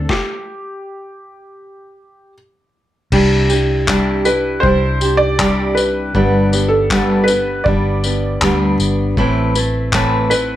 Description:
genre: acoustic pop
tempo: 79 BPM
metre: 4/4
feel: straight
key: unclear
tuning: A4 = 439 Hz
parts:
  - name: dark upright piano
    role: melody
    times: 0.0-10.6 s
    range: G4 to D5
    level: -19 LUFS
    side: right 1 dB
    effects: none
  - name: fingerpicked steel-string acoustic guitar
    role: accompaniment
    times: 0.0-10.6 s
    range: G2 to B4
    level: -16 LUFS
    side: equal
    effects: none
  - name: vintage muted fingered electric bass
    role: bass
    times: 0.0-10.6 s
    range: G1 to D2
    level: -19 LUFS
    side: equal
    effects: none
  - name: boom bap sampler-style drum kit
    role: drums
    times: 0.1-10.5 s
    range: crash cymbal, handclaps, kick drum, snare drum, tambourine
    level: -20 LUFS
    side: left 2 dB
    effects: none
room: light reverb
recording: none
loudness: -13 LUFS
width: side -12 dB against mid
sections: 0.0-3.1 A section; 3.1-10.6 B section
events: stop 0.1-3.1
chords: 0.0 D7sus4; 3.1 Cadd9; 6.1 G; 9.2 Amadd9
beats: | 0.09 0.85 1.60 2.36 | 3.12 3.87 4.63 5.39 | 6.14 6.90 7.66 8.41 | 9.17 9.92

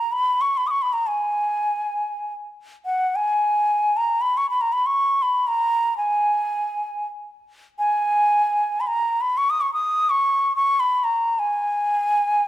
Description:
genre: indian classical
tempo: free time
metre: none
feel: none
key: unclear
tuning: A4 = 440 Hz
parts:
  - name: bansuri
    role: solo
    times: 0.0-12.5 s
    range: F#5 to D#6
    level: -19 LUFS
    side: equal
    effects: none
room: moderate recital hall reverb, RT60 1.9 s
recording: none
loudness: -19 LUFS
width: side -13 dB against mid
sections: 0.0-12.5 A section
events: none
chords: none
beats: free time

